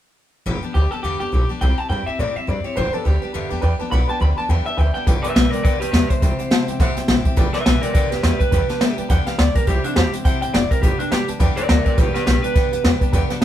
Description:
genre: rockabilly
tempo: 208 BPM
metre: 4/4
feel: swing 59% on 8ths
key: G major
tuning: A4 = 439 Hz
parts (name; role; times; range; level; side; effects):
- picked steel-string acoustic guitar; accompaniment; 0.5-13.4 s; G2 to G4; -28 LUFS; left 4 dB; none
- upright bass; bass; 0.5-13.4 s; F#1 to C3; -20 LUFS; equal; none
- electric guitar through a small old amp; melody; 0.7-13.3 s; D4 to B5; -24 LUFS; right 1 dB; none
- dark upright piano; accompaniment; 2.8-13.4 s; B4 to A5; -29 LUFS; right 3 dB; none
- jazz brush drum kit; drums; 5.1-13.4 s; hi-hat, kick drum, snare drum; -18 LUFS; equal; none
room: light reverb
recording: band playing live in one room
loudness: -16 LUFS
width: side -11 dB against mid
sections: 0.5-5.1 A section; 5.1-13.4 B section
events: none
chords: 0.5 G; 1.6 C; 2.8 G; 6.2 C; 7.4 G; 9.7 C; 10.8 G

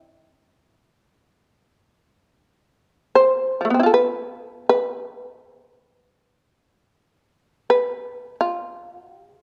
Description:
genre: japanese traditional, Japanese chamber music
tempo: free time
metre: none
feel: none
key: unclear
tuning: A4 = 440 Hz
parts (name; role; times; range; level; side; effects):
- shamisen; solo; 0.0-9.4 s; F3 to C5; -20 LUFS; equal; none
room: moderate recital hall reverb, RT60 1.6 s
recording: none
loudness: -20 LUFS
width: mono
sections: 0.0-9.4 A section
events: none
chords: none

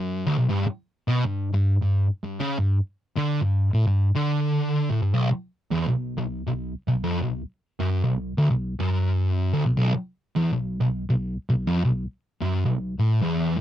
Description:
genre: metal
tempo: 104 BPM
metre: 4/4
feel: swing 59% on 8ths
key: B minor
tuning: A4 = 440 Hz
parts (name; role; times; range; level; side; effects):
- fuzz guitar; solo; 0.0-13.6 s; B1 to D3; -22 LUFS; equal; distortion
room: light reverb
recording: dry, close 1970s-style studio recording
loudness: -22 LUFS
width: side -11 dB against mid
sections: 0.0-13.6 A section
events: none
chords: none

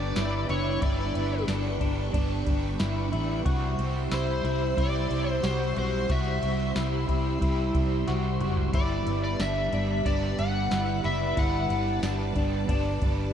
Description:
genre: dream pop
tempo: 91 BPM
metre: 4/4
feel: straight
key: unclear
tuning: A4 = 439 Hz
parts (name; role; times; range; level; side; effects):
- overdriven slide guitar; melody; 0.0-12.0 s; C5 to F#5; -32 LUFS; left 2 dB; analog chorus, analog delay
- overdriven semi-hollow guitar; accompaniment; 0.0-13.3 s; G2 to G4; -35 LUFS; right 5 dB; harmonic tremolo, wide subtle chorus
- string machine, violins; sustained chords; 0.0-13.3 s; G3 to C#6; -33 LUFS; right 1 dB; ensemble chorus
- semi-hollow electric guitar; arpeggios; 0.0-13.3 s; D4 to F#4; -33 LUFS; left 2 dB; ensemble chorus, analog delay
- vintage muted fingered electric bass; bass; 0.0-13.3 s; F#1 to C2; -30 LUFS; equal; none
- soft vintage rhythm box; drums; 0.2-13.2 s; kick drum, ride cymbal, snare drum, tambourine, toms; -30 LUFS; equal; none
room: moderate lush hall reverb, RT60 2.7 s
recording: dreamy mix soaked in reverb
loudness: -24 LUFS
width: side -9 dB against mid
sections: 0.0-13.3 A section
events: drum fill 8.1-8.7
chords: 0.0 G; 3.5 C; 8.7 G

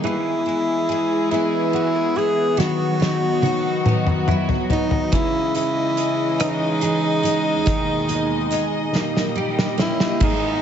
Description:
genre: six-eight pop ballad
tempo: 47 BPM (dotted quarters)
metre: 6/8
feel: straight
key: unclear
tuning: A4 = 440 Hz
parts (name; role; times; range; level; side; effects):
- breathy tenor saxophone; melody; 0.0-10.6 s; D#4 to G#4; -22 LUFS; equal; analog delay
- picked steel-string acoustic guitar; accompaniment; 0.0-10.6 s; G#2 to E4; -25 LUFS; equal; double-tracked left and right, analog delay
- warm studio string section; sustained chords; 0.0-10.6 s; D#2 to D#5; -26 LUFS; left 2 dB; none
- direct-recorded clean electric guitar; arpeggios; 0.0-10.6 s; D#3 to G#4; -29 LUFS; right 6 dB; ensemble chorus
- loose indie drum kit; drums; 2.6-10.4 s; crash cymbal, hi-hat, kick drum, rim click, snare drum, toms; -23 LUFS; equal; none
room: moderate echo chamber reverb, RT60 2.5 s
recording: echo-heavy mix, nothing above 7.9 kHz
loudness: -18 LUFS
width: side -8 dB against mid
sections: 0.0-10.2 A section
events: drum fill 2.6-5.1, 8.9-10.2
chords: 0.0 E; 2.6 B/D#; 5.1 C#madd9; 7.7 G#m/D#; 8.9 D#

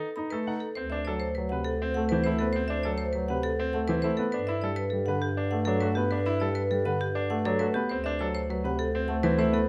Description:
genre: classical, minimalist pattern music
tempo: 101 BPM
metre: 3/4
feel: straight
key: unclear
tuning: A4 = 439 Hz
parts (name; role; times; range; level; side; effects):
- marimba with hard mallets; melody; 0.0-9.7 s; G4 to B5; -35 LUFS; equal; none
- bright baby grand piano; arpeggios; 0.0-9.7 s; C4 to F#5; -36 LUFS; equal; none
- warm grand piano; accompaniment; 0.2-9.7 s; C3 to D#4; -33 LUFS; equal; none
- mellow wooden-headed alto flute; second line; 0.8-9.7 s; B4 to C5; -38 LUFS; equal; none
- mellow bass clarinet; bass; 0.8-9.7 s; D2 to G2; -34 LUFS; equal; none
room: light reverb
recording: close, detailed microphones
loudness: -28 LUFS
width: mono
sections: 0.8-9.7 A section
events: none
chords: 0.0 B; 0.8 D13; 4.3 Gadd9; 7.9 D13

